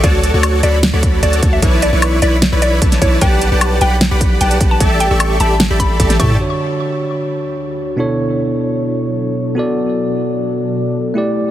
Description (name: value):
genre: future bass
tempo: 151 BPM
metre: 4/4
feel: half-time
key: D major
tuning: A4 = 440 Hz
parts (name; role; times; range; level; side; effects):
- mallet-like synth pluck; melody; 0.0-6.4 s; C#5 to C#6; -21 LUFS; left 1 dB; chorus, sidechain pumping, ping-pong delay
- dense compressed supersaw; riff; 0.0-6.4 s; E4 to C#6; -18 LUFS; equal; sidechain pumping
- long sustained 808-style bass; bass; 0.0-6.4 s; A1 to A2; -15 LUFS; equal; sidechain pumping
- electronic kick drum; drums; 0.0-6.3 s; none; -15 LUFS; equal; none
- pop drum kit; drums; 0.0-6.5 s; crash cymbal, hi-hat, snare drum, toms, woodblock; -17 LUFS; equal; low-pass filter on snare, low-pass filter on hats, low-pass filter on perc, low-pass filter on toms, low-pass filter on cymbals
- bell-like tine electric piano; accompaniment; 6.4-11.5 s; B2 to D5; -17 LUFS; right 1 dB; sidechain pumping, ping-pong delay
- ethereal airy pad; sustained chords; 7.4-11.5 s; D2 to D5; -23 LUFS; left 2 dB; ensemble chorus, built-in reverb, sidechain pumping
room: light reverb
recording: heavily compressed radio sound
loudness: -12 LUFS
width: side -12 dB against mid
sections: 0.0-6.4 A section; 6.4-11.5 B section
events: drop 0.0-6.4; drum fill 6.1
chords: 0.0 Dmaj7; 1.6 Bm11; 3.2 Gmaj9/B; 4.8 A7sus4; 6.4 Dmaj7; 8.0 Bm11; 9.6 Bm7